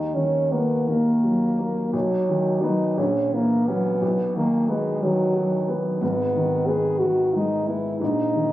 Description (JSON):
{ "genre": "classical, romantic duo for French horn and grand piano", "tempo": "59 BPM (dotted quarters)", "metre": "6/8", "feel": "uneven beats, rubato", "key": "unclear", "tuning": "A4 = 440 Hz", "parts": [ { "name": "mellow French horn", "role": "melody", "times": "0.0-8.5 s", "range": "F#3 to G#4", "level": "-22 LUFS", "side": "equal", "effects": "none" }, { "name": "warm grand piano", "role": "accompaniment", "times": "0.0-8.5 s", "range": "G#1 to Db4", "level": "-24 LUFS", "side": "equal", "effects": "none" } ], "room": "light reverb", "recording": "recorded on a phone in the room, club ambience", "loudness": "-20 LUFS", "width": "side -14 dB against mid", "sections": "0.0-8.5 A section", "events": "none", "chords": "0.0 Ebm; 1.9 B; 3.0 Gb7/Bb; 4.0 B; 6.0 G#m; 8.0 D#5/A#" }